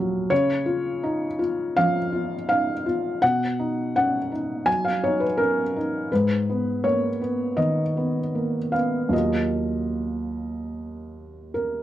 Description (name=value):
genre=neoclassical minimalist piano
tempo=82 BPM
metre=4/4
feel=uneven beats, rubato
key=Eb minor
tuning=A4 = 440 Hz
part: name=felt-muted upright piano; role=solo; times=0.0-11.8 s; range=Eb2 to Ab5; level=-22 LUFS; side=equal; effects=none
room=moderate small room ambience, RT60 0.5 s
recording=dark, warm production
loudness=-22 LUFS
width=side -13 dB against mid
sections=0.0-11.8 A section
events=none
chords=0.3 Db; 3.2 B; 6.1 Abmadd9; 9.1 Ebmadd9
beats=| 0.31 1.04 1.76 2.49 | 3.22 3.95 4.67 5.38 | 6.10 6.83 7.57 8.33 | 9.12 9.94 10.76 11.56